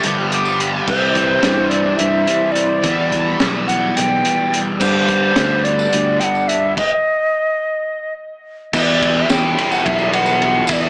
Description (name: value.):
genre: psychedelic rock.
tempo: 214 BPM (eighths).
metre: 7/8.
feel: straight.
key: E minor.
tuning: A4 = 440 Hz.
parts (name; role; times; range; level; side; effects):
string machine, violas; sustained chords; 0.0-6.7 s; G3 to B5; -26 LUFS; equal; ensemble chorus.
crunchy overdriven guitar; riff; 0.0-10.9 s; E2 to G4; -19 LUFS; equal; flanger.
fingered electric bass; bass; 0.0-10.9 s; G1 to G2; -22 LUFS; equal; none.
crunchy breakbeat drum kit; drums; 0.0-10.8 s; crash cymbal, hi-hat, kick drum, ride cymbal, snare drum; -19 LUFS; equal; none.
tambourine; percussion; 0.5-0.6, 4.8-10.8 s; none; -31 LUFS; equal; none.
mellow hollow tenor recorder; melody; 0.9-10.9 s; C5 to G5; -18 LUFS; equal; tape echo.
room: light reverb, small room reverb.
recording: small speaker sound.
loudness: -14 LUFS.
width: side -37 dB against mid.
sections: 0.9-8.7 A section; 8.7-10.9 B section.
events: stop 6.8-8.7.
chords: 0.0 G7; 0.9 C; 2.8 Em7; 4.8 Gmaj7; 6.8 N.C.; 8.7 Em.